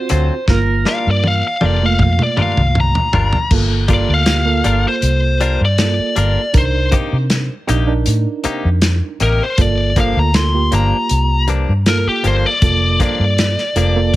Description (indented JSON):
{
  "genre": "straight-eighth soul blues",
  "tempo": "79 BPM",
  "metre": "4/4",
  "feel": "straight",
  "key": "G minor",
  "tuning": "A4 = 440 Hz",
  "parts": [
    { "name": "biting lead guitar", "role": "melody", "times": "0.0-14.2 s", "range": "G4 to C6", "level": "-18 LUFS", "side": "left 2 dB", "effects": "overdrive, plate reverb" },
    { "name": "overdriven slide guitar", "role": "second line", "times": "0.0-0.8 s", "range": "Bb4 to C5", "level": "-23 LUFS", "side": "right 3 dB", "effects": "plate reverb" },
    { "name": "reed electric piano", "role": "accompaniment", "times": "0.0-14.2 s", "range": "A3 to Bb4", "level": "-22 LUFS", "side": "right 6 dB", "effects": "fast tremolo" },
    { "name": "direct-recorded clean electric guitar", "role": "stabs", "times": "0.1-14.0 s", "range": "G2 to Bb4", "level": "-23 LUFS", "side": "left 5 dB", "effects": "plate reverb" },
    { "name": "vintage muted fingered electric bass", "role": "bass", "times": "0.1-14.2 s", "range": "F1 to C3", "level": "-16 LUFS", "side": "equal", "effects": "none" },
    { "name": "warm soul drum kit", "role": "drums", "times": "0.1-14.2 s", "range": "crash cymbal, hi-hat, kick drum, snare drum, toms", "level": "-17 LUFS", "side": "equal", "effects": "none" }
  ],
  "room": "light reverb",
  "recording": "none",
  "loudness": "-13 LUFS",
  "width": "side -16 dB against mid",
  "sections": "0.0-3.5 A section; 3.5-14.2 B section",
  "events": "drum fill 0.5-3.5; lead electric guitar solo 3.5-14.2",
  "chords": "0.5 Gm7; 6.6 Cm7; 9.6 Gm7"
}